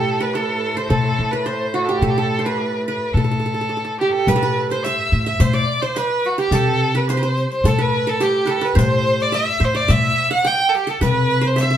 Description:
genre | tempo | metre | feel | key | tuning
Turkish makam ensemble | 107 BPM | 4/4 | straight | A makam huseyni | A4 = 440 Hz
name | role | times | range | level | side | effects
rich violin | melody | 0.0-11.8 s | F#4-28c to G5 | -20 LUFS | left 1 dB | none
qanun | second line | 0.0-11.8 s | F#4-30c to G5 | -22 LUFS | right 5 dB | none
upright bass | bass | 0.0-11.8 s | A2 to C3 | -21 LUFS | equal | none
bright cello | drone | 0.0-4.3 s | A2 | -29 LUFS | equal | none
darbuka | percussion | 0.1-11.7 s | none | -24 LUFS | left 5 dB | none
riq | percussion | 4.3-11.8 s | none | -30 LUFS | left 3 dB | none
room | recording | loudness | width
moderate stone room reverb, RT60 1.0 s | band playing live in one room | -16 LUFS | side -10 dB against mid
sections
0.0-4.3 A section; 4.3-11.8 B section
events
drum fill 3.7-4.3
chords
none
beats
0.34 0.90 1.46 | 2.02 2.59 3.15 3.71 | 4.27 4.83 5.40 5.96 | 6.52 7.08 7.64 8.21 | 8.77 9.33 9.89 10.45 | 11.01 11.57

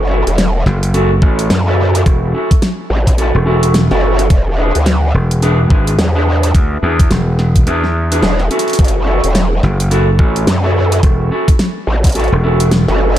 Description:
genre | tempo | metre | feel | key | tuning
glitch hop | 107 BPM | 4/4 | swing 60% on 16ths | F# minor | A4 = 440 Hz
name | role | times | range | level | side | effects
mellow electric guitar | stabs | 0.0-13.2 s | C#4 to B4 | -18 LUFS | equal | vintage 12-bit sampler grit, sidechain pumping, dub echo
growl bass | bass | 0.0-13.2 s | E1 to F#2 | -13 LUFS | equal | chorus, overdrive
dubstep drum kit | drums | 0.3-13.2 s | hi-hat, snare drum | -19 LUFS | equal | studio reverb
gritty slap bass | bass | 0.7-12.9 s | E1 to E2 | -13 LUFS | equal | overdrive
electronic kick drum | drums | 1.2-12.1 s | none | -11 LUFS | equal | studio reverb
room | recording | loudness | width
little or no reverb | dark, warm production | -10 LUFS | side -12 dB against mid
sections
0.0-13.2 A section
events
drum fill 8.5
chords
0.0 F#m7; 4.3 E7; 8.8 F#m7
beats
0.38 0.94 1.50 | 2.06 2.62 3.18 3.74 | 4.30 4.86 5.42 5.99 | 6.55 7.11 7.67 8.23 | 8.79 9.35 9.91 10.47 | 11.03 11.59 12.15 12.71

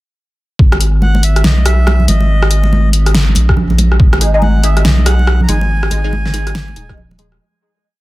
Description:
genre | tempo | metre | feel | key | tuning
deep dubstep | 141 BPM | 4/4 | swing 62% on 16ths, half-time | G# minor | A4 = 438 Hz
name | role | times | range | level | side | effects
soft dub sub bass | bass | 0.6-7.4 s | D#1 to B1 | -11 LUFS | equal | none
electronic kick drum | drums | 0.6-0.7, 3.5-4.1, 6.9-7.0 s | none | -9 LUFS | equal | none
deep house drum kit | drums | 0.7-7.4 s | hi-hat, rim click, snare drum | -16 LUFS | equal | soft clipping on snare
congas | percussion | 0.7-7.3 s | none | -20 LUFS | right 1 dB | none
melodica | melody | 1.0-6.9 s | D#5 to A#5 | -24 LUFS | right 1 dB | dub echo
filtered dub chord stab | stabs | 4.2-7.3 s | G#3 to G#4 | -20 LUFS | equal | phaser, ensemble chorus, dub echo
room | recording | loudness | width
digital ambience | dense, heavily limited modern master | -9 LUFS | side -18 dB against mid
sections
0.6-7.4 drop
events
drop 0.6-7.4; fade-out 5.1-7.4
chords
0.6 G#5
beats
| 0.59 1.02 1.44 1.87 | 2.29 2.72 3.15 3.57 | 4.00 4.42 4.85 5.27 | 5.70 6.12 6.55 6.98

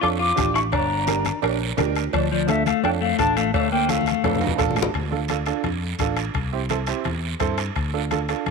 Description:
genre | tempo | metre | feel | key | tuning
latin, cumbia | 171 BPM | 4/4 | straight | D minor | A4 = 441 Hz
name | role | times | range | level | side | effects
mellow hollow silver concert flute | melody | 0.0-4.4 s | D5 to D6 | -24 LUFS | left 1 dB | none
clean electric guitar | second line | 0.0-4.4 s | F3 to F4 | -26 LUFS | left 14 dB | none
clear upright piano | accompaniment | 0.0-8.5 s | C4 to A5 | -26 LUFS | right 13 dB | none
fingered electric bass | bass | 0.0-8.5 s | G1 to G2 | -27 LUFS | equal | none
bombo | percussion | 0.0-8.5 s | none | -29 LUFS | left 6 dB | none
congas | percussion | 0.0-8.5 s | none | -30 LUFS | left 9 dB | none
cowbell and timbales | percussion | 0.0-8.5 s | none | -32 LUFS | right 14 dB | none
guiro | percussion | 0.0-8.5 s | none | -34 LUFS | right 13 dB | none
room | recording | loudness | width
moderate plate reverb, RT60 2.3 s | 1960s-style stereo with parts hard left and right | -20 LUFS | side -4 dB against mid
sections
0.0-4.9 A section; 4.9-8.5 B section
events
drum fill 3.9-4.9; upright piano fill 4.2-4.9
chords
0.0 Dm; 0.7 Gm; 2.1 Dm; 6.3 C; 7.8 Dm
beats
0.03 0.38 | 0.73 1.08 1.43 1.78 | 2.13 2.49 2.84 3.19 | 3.54 3.89 4.24 4.59 | 4.94 5.29 5.65 6.00 | 6.35 6.70 7.05 7.41 | 7.76 8.11 8.46

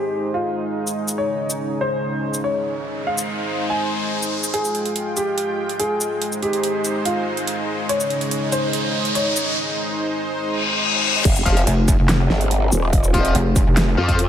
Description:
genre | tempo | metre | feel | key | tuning
heavy wobble dubstep | 143 BPM | 4/4 | half-time | F minor | A4 = 444 Hz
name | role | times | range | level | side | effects
warm grand piano | melody | 0.0-9.6 s | F4 to Ab5 | -24 LUFS | equal | digital delay
supersaw pad | sustained chords | 0.0-14.3 s | Db3 to G5 | -25 LUFS | equal | sidechain pumping, low-pass filter
dubstep drum kit | drums | 0.9-14.3 s | crash cymbal, handclaps, hi-hat, shaker, snare drum | -24 LUFS | equal | overdrive
riser and reverse cymbal | sound effects | 2.1-11.3 s | none | -25 LUFS | left 2 dB | none
growl bass | bass | 11.3-14.3 s | Eb1 to F2 | -19 LUFS | equal | chorus, overdrive
electronic kick drum | drums | 11.3-14.2 s | none | -18 LUFS | equal | none
fuzz guitar | stabs | 11.5-14.2 s | F4 to F5 | -24 LUFS | left 4 dB | distortion, digital delay
pulsing pluck wobble bass | bass | 11.7-14.0 s | F1 | -17 LUFS | equal | chorus, overdrive
room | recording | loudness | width
light reverb | none | -18 LUFS | side -10 dB against mid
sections
0.0-4.5 A section; 4.5-11.3 B section; 11.3-14.3 C section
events
filter sweep on supersaw synth 0.0-4.5; riser 2.1-4.5, 4.5-9.6; build-up 4.5-11.3; reverse cymbal 10.5-11.3; drop 11.3-14.3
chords
0.0 Ab; 1.2 Dbsus2; 2.9 Ab; 4.5 Fmadd9; 6.2 Ab; 7.9 Dbsus2; 9.6 Ab; 11.3 Fm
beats
0.34 0.76 | 1.18 1.60 2.02 2.44 | 2.86 3.28 3.70 4.12 | 4.54 4.96 5.38 5.80 | 6.22 6.64 7.05 7.47 | 7.89 8.31 8.73 9.15 | 9.57 9.99 10.41 10.83 | 11.25 11.67 12.09 12.51 | 12.93 13.35 13.77 14.19

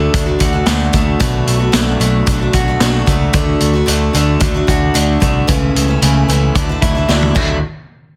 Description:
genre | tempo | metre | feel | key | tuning
folk rock and heartland rock | 112 BPM | 4/4 | straight | D major | A4 = 440 Hz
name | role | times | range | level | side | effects
picked acoustic archtop guitar | accompaniment | 0.0-7.6 s | B2 to F#4 | -20 LUFS | equal | none
electric guitar through a small old amp | riff | 0.0-7.6 s | B2 to F#4 | -22 LUFS | equal | none
picked electric bass | bass | 0.0-7.6 s | B1 to D2 | -18 LUFS | equal | none
vintage drum kit | drums | 0.1-7.5 s | crash cymbal, hi-hat, kick drum, snare drum, toms | -19 LUFS | equal | none
room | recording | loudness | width
light reverb | dense, heavily limited modern master | -14 LUFS | mono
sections
0.0-7.6 A section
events
drum fill 7.1-7.6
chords
0.0 D; 1.2 Bm7; 3.3 D; 5.5 A/C#; 6.5 Dadd9; 7.6 N.C.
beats
0.14 0.67 | 1.21 1.74 2.27 2.81 | 3.34 3.88 4.41 4.95 | 5.48 6.01 6.55 7.08

